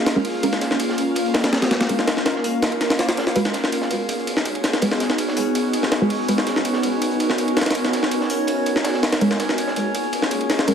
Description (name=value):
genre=drum and bass, jungle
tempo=164 BPM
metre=4/4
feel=straight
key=G# dorian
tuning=A4 = 441 Hz
part: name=ethereal airy pad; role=sustained chords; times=0.0-10.7 s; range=A#3 to A#4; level=-23 LUFS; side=equal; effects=ensemble chorus, built-in reverb
part: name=drifting glass-harmonics texture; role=texture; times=0.0-10.7 s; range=C#4 to E#5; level=-28 LUFS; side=left 1 dB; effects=chorus, built-in reverb
part: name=crunchy breakbeat drum kit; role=drums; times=0.1-10.7 s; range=hi-hat, snare drum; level=-32 LUFS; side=right 1 dB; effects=none
part: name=jungle sampler-style drum kit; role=drums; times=0.1-10.7 s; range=hi-hat, ride cymbal, snare drum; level=-22 LUFS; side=equal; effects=high-pass filter on cymbals, high-pass filter on snare, high-pass filter on hats, high-pass filter on room
part: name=filtered dub chord stab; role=stabs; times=0.2-6.4, 9.2-10.7 s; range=G#3 to B4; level=-24 LUFS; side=right 2 dB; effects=wide subtle chorus, dub echo
room=moderate plate reverb, RT60 1.1 s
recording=heavily compressed radio sound, vinyl crackle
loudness=-18 LUFS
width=side -7 dB against mid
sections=0.0-10.7 A section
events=none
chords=0.0 A#m7; 3.4 G#m7; 9.2 A#m7